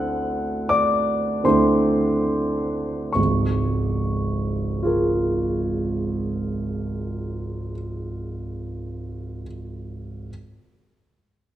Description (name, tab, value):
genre	classical, impressionist solo piano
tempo	34-46 BPM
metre	3/4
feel	rubato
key	unclear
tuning	A4 = 439 Hz
part	warm grand piano	solo	0.0-10.3 s	Db1 to F#6	-22 LUFS	right 1 dB	none
room	wet recital hall reverb, RT60 1.6 s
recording	none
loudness	-21 LUFS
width	side -12 dB against mid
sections	0.0-3.2 A section; 3.2-8.1 B section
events	slowing down 0.0-3.2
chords	0.0 D9; 3.2 Db6